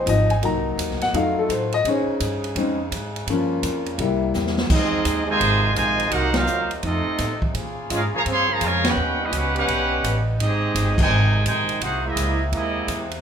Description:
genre	jazz, big band swing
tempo	168 BPM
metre	4/4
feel	swing 65% on 8ths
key	F minor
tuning	A4 = 439 Hz
part	warm grand piano	accompaniment	0.0-4.6 s	F3 to Bb5	-22 LUFS	left 3 dB	none
part	warm trombone section	sustained chords	0.0-13.2 s	C3 to Ab4	-32 LUFS	equal	none
part	upright bass	bass	0.0-13.2 s	G1 to Bb2	-25 LUFS	equal	none
part	swinging big-band drum kit	drums	0.1-13.2 s	crash cymbal, hi-hat, kick drum, ride cymbal, snare drum	-27 LUFS	right 1 dB	none
part	clear trumpet section	melody	4.7-13.1 s	Bb3 to C6	-22 LUFS	right 1 dB	none
part	clear trombone section	second line	4.7-13.1 s	C3 to G4	-26 LUFS	right 3 dB	none
room	moderate large studio reverb, RT60 1.1 s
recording	minimal, uncompressed stereo recording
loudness	-19 LUFS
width	side -8 dB against mid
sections	0.0-4.7 A section; 4.7-13.2 B section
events	grand piano solo 0.0-4.7; drum fill 4.3-4.7; band accent 6.3, 8.8, 10.9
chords	0.4 Cm7b5; 1.1 F7b9; 1.8 Bbm11; 3.3 Gm7b5; 4.0 C7; 4.7 Fm7; 6.1 Cm7b5; 6.8 F7; 7.5 Bbm7; 9.0 Eb7alt; 10.4 Abmaj7; 11.8 C7alt

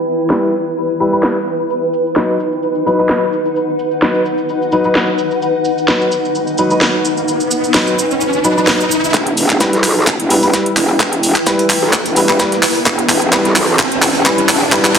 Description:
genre	bass house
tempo	129 BPM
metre	4/4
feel	swing 54% on 16ths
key	E harmonic minor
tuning	A4 = 441 Hz
part	granular cloud pad	texture	0.0-15.0 s	D#4 to A5	-18 LUFS	equal	built-in reverb, sidechain pumping
part	dark concert grand piano	stabs	0.3-14.9 s	F#3 to B4	-17 LUFS	left 1 dB	sidechain pumping, low-pass filter, ping-pong delay
part	garage drum kit	drums	0.3-15.0 s	handclaps, hi-hat, snare drum	-15 LUFS	equal	none
part	cabasa	percussion	1.7-9.1 s	none	-24 LUFS	right 3 dB	none
part	riser	sound effects	6.4-15.0 s	none	-21 LUFS	equal	none
part	metallic wobble bass	bass	9.1-15.0 s	E1 to B1	-16 LUFS	equal	chorus, overdrive, sidechain pumping, high-pass filter
part	breakbeat sampler-style drum kit	drums	9.1-15.0 s	hi-hat, shaker, snare drum	-23 LUFS	equal	high-pass filter on perc, high-pass filter on snare, high-pass filter on hats
part	electronic kick drum	drums	9.1-14.8 s	none	-21 LUFS	equal	none
room	wet digital room reverb, RT60 1.0 s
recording	heavily compressed radio sound, multiband compression, low-pass filter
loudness	-12 LUFS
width	side -7 dB against mid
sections	0.0-9.1 A section; 9.1-15.0 B section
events	filter sweep on grand piano 0.0-9.1; filter sweep 0.0-9.1; riser 6.4-9.1, 9.1-15.0; build-up 9.1-15.0; drum fill 9.1-15.0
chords	0.0 Em; 1.7 B; 9.1 Em

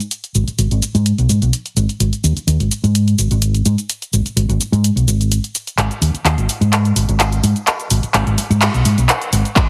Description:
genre	filtered disco house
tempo	127 BPM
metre	4/4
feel	swing 53% on 16ths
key	unclear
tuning	A4 = 440 Hz
part	punchy analog drum machine	drums	0.0-9.7 s	cabasa, handclaps, hi-hat	-21 LUFS	equal	sidechain pumping on hats, sidechain pumping on perc
part	hollow-body short-scale fingered electric bass	bass	0.3-9.7 s	Ab1 to Ab2	-17 LUFS	equal	sidechain pumping, low-pass filter
part	electronic kick drum	drums	9.6-9.7 s	none	-14 LUFS	equal	none
room	light reverb, digital ambience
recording	heavily compressed radio sound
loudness	-16 LUFS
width	mono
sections	0.0-5.8 A section; 5.8-9.7 B section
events	filter sweep on fingered electric bass 0.0-5.8, 5.8-9.7; build-up 5.8-9.7; drum fill 5.8-9.7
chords	none

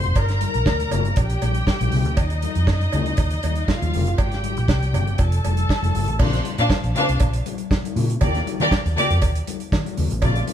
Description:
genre	disco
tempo	119 BPM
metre	4/4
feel	straight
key	Bb major from 6.2 s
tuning	A4 = 436 Hz
part	clear studio string section	second line	0.0-10.3 s	A3 to C6	-25 LUFS	left 1 dB	none
part	vintage muted fingered electric bass	bass	0.0-10.4 s	F1 to Eb3	-22 LUFS	equal	none
part	damped 70s drum kit	drums	0.0-10.5 s	crash cymbal, hi-hat, kick drum, snare drum	-23 LUFS	right 1 dB	none
part	congas	percussion	0.2-10.5 s	none	-29 LUFS	left 6 dB	none
part	cowbell	percussion	0.2-10.3 s	none	-33 LUFS	right 6 dB	none
room	moderate stone room reverb, RT60 1.3 s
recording	band playing live in one room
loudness	-18 LUFS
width	side -10 dB against mid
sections	0.0-6.2 A section; 6.2-10.5 B section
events	none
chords	0.2 Gm; 2.2 Ebmadd9; 4.2 Abmaj7; 5.2 Fadd9; 6.2 Bbadd9; 8.2 Eb

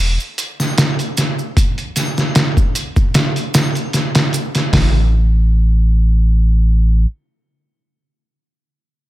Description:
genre	trip hop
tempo	76 BPM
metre	4/4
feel	swing 54% on 16ths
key	unclear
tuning	A4 = 440 Hz
part	warm sub bass	bass	0.0-7.1 s	E1 to A1	-12 LUFS	equal	none
part	maracas and triangle	percussion	0.2-4.7 s	none	-28 LUFS	right 4 dB	none
part	trip hop sampler-style drum kit	drums	0.4-4.9 s	hi-hat, kick drum, snare drum	-15 LUFS	equal	none
room	little or no reverb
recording	none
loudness	-13 LUFS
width	side -16 dB against mid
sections	0.0-4.7 A section; 4.7-7.9 B section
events	none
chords	none

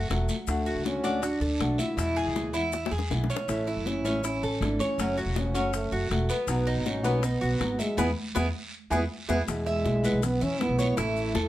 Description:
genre	latin, Cuban son and guajira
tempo	160 BPM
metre	4/4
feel	straight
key	unclear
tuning	A4 = 440 Hz
part	mellow French horn	melody	0.0-11.5 s	G#3 to E4	-30 LUFS	equal	none
part	Cuban tres	arpeggios	0.0-11.5 s	B3 to E5	-31 LUFS	right 2 dB	none
part	upright bass	bass	0.0-11.5 s	E1 to E2	-30 LUFS	equal	none
part	nylon-string guitar	accompaniment	0.1-11.5 s	B2 to F#4	-34 LUFS	left 3 dB	none
part	bongos	percussion	0.1-11.5 s	none	-36 LUFS	left 7 dB	none
part	congas	percussion	0.1-11.5 s	none	-37 LUFS	left 2 dB	none
part	guiro	percussion	0.1-11.5 s	none	-41 LUFS	right 3 dB	none
part	maracas	percussion	0.1-11.5 s	none	-43 LUFS	left 7 dB	none
room	moderate studio reverb, RT60 0.5 s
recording	none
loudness	-25 LUFS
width	side -14 dB against mid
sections	0.0-9.5 A section; 9.5-11.5 B section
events	drum fill 2.7-3.5, 8.4-9.5; band accent 8.0-9.5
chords	0.5 D; 2.0 E; 3.5 A; 5.0 F#m; 6.5 B; 8.0 E; 11.0 A

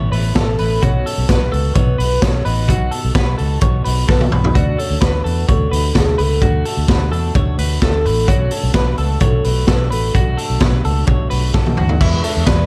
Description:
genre	jangly indie pop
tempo	129 BPM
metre	4/4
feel	straight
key	unclear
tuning	A4 = 442 Hz
part	electric guitar through a small old amp	accompaniment	0.0-12.7 s	E2 to F#4	-30 LUFS	equal	none
part	twelve-string electric guitar	arpeggios	0.0-12.7 s	E4 to C#5	-27 LUFS	equal	warbly pitch drift, slapback echo
part	vintage muted fingered electric bass	bass	0.0-12.7 s	A1 to E2	-20 LUFS	equal	none
part	raw garage drum kit	drums	0.1-12.6 s	crash cymbal, hi-hat, kick drum, snare drum, toms	-19 LUFS	equal	none
part	hollow clarinet-like synth lead	melody	0.4-12.7 s	G#4 to E5	-25 LUFS	equal	chorus, slapback echo
room	small room ambience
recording	dark, warm production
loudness	-16 LUFS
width	mono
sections	0.0-12.0 A section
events	drum fill 4.1-4.6, 11.5-12.0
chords	0.0 Aadd9; 0.8 B; 4.6 D; 8.3 Bm7; 12.0 E7

